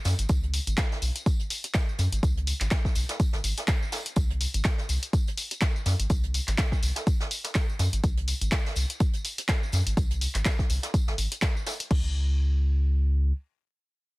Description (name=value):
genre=deep house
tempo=124 BPM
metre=4/4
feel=swing 56% on 16ths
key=unclear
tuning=A4 = 438 Hz
part: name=jazz brush drum kit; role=drums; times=0.0-11.8 s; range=hi-hat, snare drum, tambourine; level=-38 LUFS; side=right 1 dB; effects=sidechain pumping on hats, high-pass filter on hats, soft clipping on snare, high-pass filter on snare, sidechain pumping on perc, high-pass filter on perc, high-pass filter on room
part: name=round analog bass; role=bass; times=0.1-13.3 s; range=G#1 to F#2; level=-26 LUFS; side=equal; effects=sidechain pumping
part: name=punchy analog drum machine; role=drums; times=0.1-12.0 s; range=crash cymbal, handclaps, hi-hat, tambourine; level=-32 LUFS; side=left 1 dB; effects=none
part: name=electronic kick drum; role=drums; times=0.3-12.0 s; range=none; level=-25 LUFS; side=equal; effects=overdrive
room=small room ambience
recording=dense, heavily limited modern master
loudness=-24 LUFS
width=side -22 dB against mid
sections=0.0-11.9 A section; 11.9-14.2 B section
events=drop 0.0-11.9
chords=none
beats=| 0.29 0.78 1.26 1.75 | 2.23 2.71 3.20 3.68 | 4.17 4.65 5.13 5.62 | 6.10 6.58 7.07 7.55 | 8.04 8.52 9.00 9.49 | 9.97 10.46 10.94 11.42 | 11.91 12.39 12.88